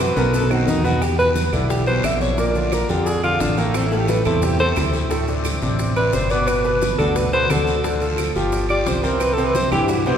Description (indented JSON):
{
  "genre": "Afro-Cuban jazz",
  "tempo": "176 BPM",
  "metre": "4/4",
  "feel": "straight",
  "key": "E minor",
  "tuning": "A4 = 440 Hz",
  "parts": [
    { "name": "breathy alto saxophone", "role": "melody", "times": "0.0-10.2 s", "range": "A#3 to E5", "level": "-21 LUFS", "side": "equal", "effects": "none" },
    { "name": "clear grand piano", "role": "accompaniment", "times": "0.0-10.2 s", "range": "A2 to D5", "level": "-22 LUFS", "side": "equal", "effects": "none" },
    { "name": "modern bright fingered electric bass", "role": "bass", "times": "0.0-10.2 s", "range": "G1 to G2", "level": "-23 LUFS", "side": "equal", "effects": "none" },
    { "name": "claves", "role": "percussion", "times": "0.0-9.9 s", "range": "none", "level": "-34 LUFS", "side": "right 5 dB", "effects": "none" },
    { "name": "congas", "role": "percussion", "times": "0.0-10.2 s", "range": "none", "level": "-30 LUFS", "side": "left 1 dB", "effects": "none" },
    { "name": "bongos", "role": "percussion", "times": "0.2-10.2 s", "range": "none", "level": "-31 LUFS", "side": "left 4 dB", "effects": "none" },
    { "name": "guiro", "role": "percussion", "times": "0.2-10.2 s", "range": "none", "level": "-35 LUFS", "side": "left 5 dB", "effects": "none" },
    { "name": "maracas", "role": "percussion", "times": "0.2-10.2 s", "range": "none", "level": "-36 LUFS", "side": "right 4 dB", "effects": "none" }
  ],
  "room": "wet concert hall reverb, RT60 2.1 s",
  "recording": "recorded in a church or concert hall",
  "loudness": "-17 LUFS",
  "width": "side -8 dB against mid",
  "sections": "0.0-1.0 A section; 1.0-10.2 A section",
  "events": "drum fill 0.0-1.0; alto saxophone solo 0.0-10.2",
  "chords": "0.3 B; 1.0 E5; 2.4 A#; 3.7 Am; 5.1 D5; 6.5 Gmaj7; 7.8 Dm; 8.5 A#69/G; 9.2 Cmaj7"
}